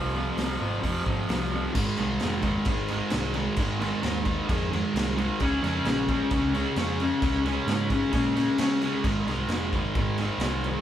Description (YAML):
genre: garage rock duo or trio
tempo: 132 BPM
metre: 4/4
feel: straight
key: unclear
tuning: A4 = 436 Hz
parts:
  - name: fuzz guitar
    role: riff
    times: 0.0-10.8 s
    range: F2 to Db4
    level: -26 LUFS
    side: equal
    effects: distortion
  - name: picked electric bass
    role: bass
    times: 0.0-10.7 s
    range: F1 to Db3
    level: -32 LUFS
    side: equal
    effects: tube saturation
  - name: raw garage drum kit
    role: drums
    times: 0.4-10.7 s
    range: crash cymbal, hi-hat, kick drum, snare drum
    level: -31 LUFS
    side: equal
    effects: none
room: light reverb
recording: band playing live in one room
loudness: -24 LUFS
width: side -10 dB against mid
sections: 0.0-1.8 A section; 1.8-10.8 B section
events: none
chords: 0.0 Fm; 1.8 Ab; 5.4 Db; 9.0 Ab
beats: 0.38 0.84 1.29 | 1.75 2.21 2.67 3.12 | 3.58 4.03 4.49 4.94 | 5.40 5.86 6.31 6.76 | 7.22 7.67 8.13 8.59 | 9.04 9.49 9.95 10.41